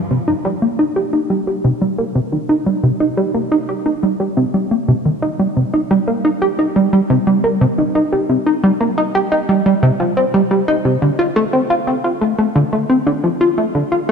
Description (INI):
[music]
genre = ambient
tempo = 88 BPM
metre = 4/4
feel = straight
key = C dorian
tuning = A4 = 440 Hz
[part]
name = plucky analog bass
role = solo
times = 0.1-14.1 s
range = C3 to G4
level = -14 LUFS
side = equal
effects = lush chorus, tape echo
[sound]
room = wet lush hall reverb, RT60 2.7 s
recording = none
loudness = -14 LUFS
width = side -6 dB against mid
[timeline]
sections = 0.1-14.1 A section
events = none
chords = none